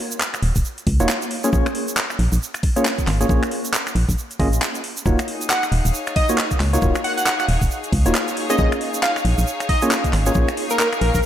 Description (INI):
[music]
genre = UK garage, two-step garage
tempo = 136 BPM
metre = 4/4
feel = swing 60% on 16ths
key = Eb minor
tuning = A4 = 440 Hz
[part]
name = garage drum kit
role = drums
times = 0.1-11.2 s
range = finger snaps, handclaps, hi-hat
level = -25 LUFS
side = equal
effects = none
[part]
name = tube shaker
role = percussion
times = 0.1-11.3 s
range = none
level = -31 LUFS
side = right 5 dB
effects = none
[part]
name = organ-like FM bass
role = bass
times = 0.4-11.2 s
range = Eb1 to Db2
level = -19 LUFS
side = equal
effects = tube saturation
[part]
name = electronic kick drum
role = drums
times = 0.6-11.2 s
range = none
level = -21 LUFS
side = equal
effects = none
[part]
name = percussive organ stab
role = stabs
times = 1.0-10.5 s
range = Bb3 to Eb5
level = -23 LUFS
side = equal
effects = chorus, analog delay
[part]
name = bright symphonic string section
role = texture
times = 5.1-11.3 s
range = Eb4 to F5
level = -28 LUFS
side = left 2 dB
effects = sidechain pumping
[part]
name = plucky unison lead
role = melody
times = 5.5-11.2 s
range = Bb4 to Gb5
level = -23 LUFS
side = equal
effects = analog delay
[sound]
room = moderate lush hall reverb, RT60 1.7 s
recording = dreamy mix soaked in reverb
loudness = -17 LUFS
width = side -11 dB against mid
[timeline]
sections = 0.0-11.3 A section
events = none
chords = 0.0 Ebm9; 1.3 Bbm7; 5.1 Ebm9; 8.4 Bbm7